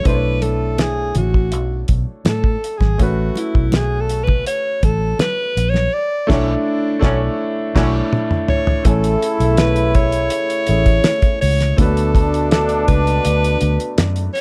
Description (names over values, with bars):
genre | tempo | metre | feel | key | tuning
lush 1970s-style soul | 82 BPM | 4/4 | straight | A major | A4 = 440 Hz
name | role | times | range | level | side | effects
mellow alto saxophone | melody | 0.0-14.4 s | D4 to D5 | -23 LUFS | equal | none
warm grand piano | accompaniment | 0.0-14.4 s | A3 to G#5 | -26 LUFS | equal | none
vintage muted fingered electric bass | bass | 0.1-14.3 s | G#1 to A2 | -21 LUFS | equal | none
cloth-damped thuddy drum kit | drums | 0.1-14.4 s | crash cymbal, hi-hat, kick drum, snare drum, toms | -20 LUFS | equal | none
congas | percussion | 0.1-5.9 s | none | -28 LUFS | equal | none
warm trombone section | stabs | 6.3-14.3 s | A2 to E4 | -24 LUFS | equal | none
room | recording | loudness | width
studio reverb | dark, warm production | -17 LUFS | mono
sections
0.0-8.9 A section; 8.9-14.4 B section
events
alto saxophone solo 0.0-8.9; band accent 5.9-8.9; drum fill 7.4-8.9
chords
0.1 Bm11; 3.0 A69; 5.9 Bm11; 8.9 Amaj7; 11.8 D6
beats
| 0.06 0.79 1.53 2.26 | 2.99 3.73 4.46 5.20 | 5.93 6.66 7.39 8.13 | 8.86 9.59 10.32 11.05 | 11.78 12.52 13.25 13.98